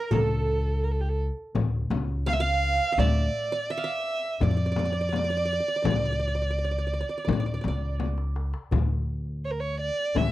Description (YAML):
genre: Arabic maqam ensemble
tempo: 84 BPM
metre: 4/4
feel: straight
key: D maqam nahawand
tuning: A4 = 439 Hz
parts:
  - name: dark violin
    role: melody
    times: 0.0-10.3 s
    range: G4 to F5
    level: -29 LUFS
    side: right 2 dB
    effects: none
  - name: qanun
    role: second line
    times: 0.0-8.7 s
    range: A4 to F5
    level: -34 LUFS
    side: right 6 dB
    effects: none
  - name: upright bass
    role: bass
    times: 0.1-10.3 s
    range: C#2 to F2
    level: -27 LUFS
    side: equal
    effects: none
  - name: darbuka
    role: percussion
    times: 0.1-10.3 s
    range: none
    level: -31 LUFS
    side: left 2 dB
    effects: none
  - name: frame drum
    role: percussion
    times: 0.1-10.3 s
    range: none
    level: -30 LUFS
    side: left 6 dB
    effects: none
room: little or no reverb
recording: dry, close 1970s-style studio recording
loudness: -24 LUFS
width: side -15 dB against mid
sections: 0.0-8.7 A section; 8.7-10.3 B section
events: drum fill 8.0-8.7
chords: none